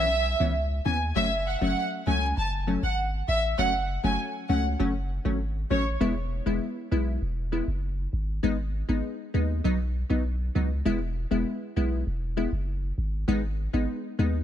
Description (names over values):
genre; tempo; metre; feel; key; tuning
dancehall; 99 BPM; 4/4; straight; unclear; A4 = 440 Hz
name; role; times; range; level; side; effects
warm studio violin section; melody; 0.0-5.8 s; C#5 to A5; -28 LUFS; right 1 dB; tape echo
wavetable chord stab; accompaniment; 0.0-14.4 s; E3 to E4; -29 LUFS; left 1 dB; none
punchy sub bass; bass; 0.0-14.4 s; E1 to D#2; -28 LUFS; equal; none
room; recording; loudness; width
small room ambience; none; -25 LUFS; side -10 dB against mid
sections
0.0-6.0 A section; 6.0-14.4 B section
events
none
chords
0.0 C#m7; 1.2 F#m; 6.0 E; 8.4 G#m; 9.6 B; 10.9 E; 13.3 G#m